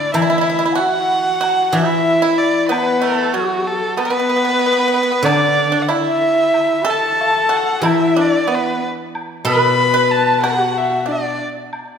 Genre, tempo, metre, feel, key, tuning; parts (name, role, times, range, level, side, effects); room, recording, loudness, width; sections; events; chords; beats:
chinese traditional, Chinese chamber ensemble; 94 BPM; 4/4; straight; D gong mode; A4 = 440 Hz
warm erhu; melody; 0.0-11.4 s; F#4 to B5; -18 LUFS; right 2 dB
mellow large dizi; second line; 0.0-11.4 s; F#4 to B5; -22 LUFS; left 3 dB
pipa; second line; 0.0-11.4 s; F#3 to B4; -21 LUFS; right 6 dB
rich horsehead fiddle; second line; 0.0-11.4 s; F#3 to B4; -20 LUFS; left 4 dB
guzheng; accompaniment; 0.0-11.4 s; B2 to E4; -23 LUFS; left 1 dB
woodblock; percussion; 0.1-11.9 s; -28 LUFS; equal
wet scoring stage reverb, RT60 1.9 s; recorded in a church or concert hall; -14 LUFS; side -7 dB against mid
0.0-12.0 A section
| 0.14 0.79 1.43 2.06 | 2.70 3.34 3.97 4.61 | 5.25 5.90 6.55 7.21 | 7.86 8.51 9.16 9.80 | 10.44 11.08 11.71